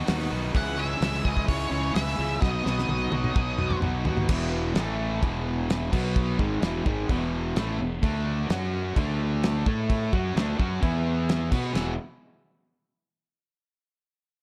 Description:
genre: classic rock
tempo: 129 BPM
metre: 4/4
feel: straight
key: E mixolydian from 4.3 s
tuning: A4 = 441 Hz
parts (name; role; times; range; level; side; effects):
- distorted electric guitar; riff; 0.0-11.9 s; E2 to B4; -31 LUFS; equal; distortion
- fuzz fingered electric bass; bass; 0.1-12.0 s; E1 to B2; -32 LUFS; equal; overdrive
- cloth-damped thuddy drum kit; drums; 0.1-11.9 s; crash cymbal, hi-hat, kick drum, snare drum, toms; -31 LUFS; equal; none
- octave-fuzz lead guitar; melody; 0.6-3.8 s; C#5 to F#5; -34 LUFS; equal; distortion, digital delay
room: small room ambience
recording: none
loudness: -26 LUFS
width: mono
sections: 0.0-4.3 A section; 4.3-11.7 B section; 11.7-13.6 C section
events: drum fill 2.4-4.3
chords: 0.0 B/D#; 0.6 C#m; 2.4 B; 4.3 E5; 4.8 A5; 5.2 E5; 5.9 B5; 6.4 E; 8.0 D5; 8.5 F#5; 9.0 D5; 9.7 A5; 10.1 D5; 10.8 E5; 11.5 B5; 11.7 E5

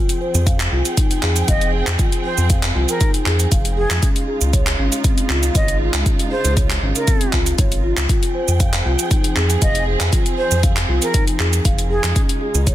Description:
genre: afro house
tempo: 118 BPM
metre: 4/4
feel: straight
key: F minor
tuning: A4 = 438 Hz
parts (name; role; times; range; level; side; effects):
- warm symphonic string section; sustained chords; 0.0-12.7 s; Db3 to G5; -27 LUFS; right 3 dB; sidechain pumping
- marimba with soft mallets; arpeggios; 0.0-12.7 s; C4 to F5; -24 LUFS; left 1 dB; sidechain pumping, dub echo
- deep house drum kit; drums; 0.1-12.7 s; handclaps, hi-hat, shaker; -23 LUFS; right 1 dB; overdrive
- round analog bass; bass; 0.3-12.7 s; F1 to F2; -19 LUFS; equal; sidechain pumping
- electronic kick drum; drums; 0.5-12.7 s; none; -18 LUFS; equal; none
- breathy jazz flute; melody; 1.5-12.2 s; Ab4 to Eb5; -26 LUFS; right 1 dB; vintage 12-bit sampler grit, dub echo
room: small room ambience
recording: dense, heavily limited modern master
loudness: -15 LUFS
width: side -13 dB against mid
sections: 0.0-12.7 A section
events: none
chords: 0.0 Fm; 4.0 Db; 8.1 Fm; 12.2 Db

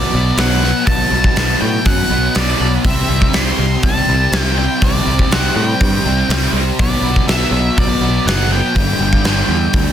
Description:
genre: rock, shoegaze and dream pop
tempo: 122 BPM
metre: 4/4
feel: straight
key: unclear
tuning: A4 = 441 Hz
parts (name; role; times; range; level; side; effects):
- octave-fuzz lead guitar; melody; 0.0-9.9 s; D5 to C6; -20 LUFS; equal; distortion, slapback echo
- fuzz guitar; riff; 0.0-9.9 s; G2 to C4; -18 LUFS; equal; distortion, analog chorus
- modern bright picked electric bass; bass; 0.0-9.9 s; F#1 to A2; -18 LUFS; equal; none
- gated 80s drum kit; drums; 0.4-9.9 s; hi-hat, kick drum, snare drum; -17 LUFS; equal; soft clipping on snare
room: small room ambience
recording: dense, heavily limited modern master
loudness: -12 LUFS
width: side -10 dB against mid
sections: 0.0-9.9 A section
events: none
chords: 0.0 Bm; 2.8 C5; 6.8 Bm; 8.8 G5

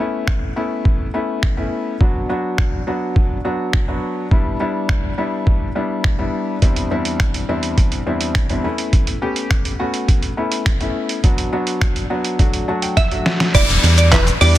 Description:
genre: dance-pop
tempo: 104 BPM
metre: 4/4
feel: straight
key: E minor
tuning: A4 = 438 Hz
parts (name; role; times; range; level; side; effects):
- warm concert grand piano; accompaniment; 0.0-14.6 s; E2 to A5; -21 LUFS; left 1 dB; sidechain pumping
- trip hop sampler-style drum kit; drums; 0.3-14.6 s; crash cymbal, finger snaps, handclaps, hi-hat, kick drum, shaker, snare drum; -16 LUFS; equal; soft clipping on snare
- glassy wavetable pluck; melody; 13.0-14.6 s; B4 to E5; -18 LUFS; right 2 dB; chorus, ping-pong delay
- mellow electric guitar; riff; 13.5-14.6 s; D4 to E4; -26 LUFS; right 6 dB; analog chorus
- round analog bass; bass; 13.5-14.6 s; E1 to E2; -13 LUFS; equal; sidechain pumping
- downlifter; sound effects; 13.5-14.6 s; none; -21 LUFS; equal; none
room: little or no reverb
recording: dense, heavily limited modern master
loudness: -16 LUFS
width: side -14 dB against mid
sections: 0.0-13.5 A section; 13.5-14.6 B section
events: grand piano fill 12.4-13.5; drum fill 13.0-13.5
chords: 0.0 Aadd9; 2.0 Bm; 4.3 Em7; 6.6 Cadd9/E; 8.6 Aadd9; 11.2 Bm; 12.4 D; 13.5 Em7

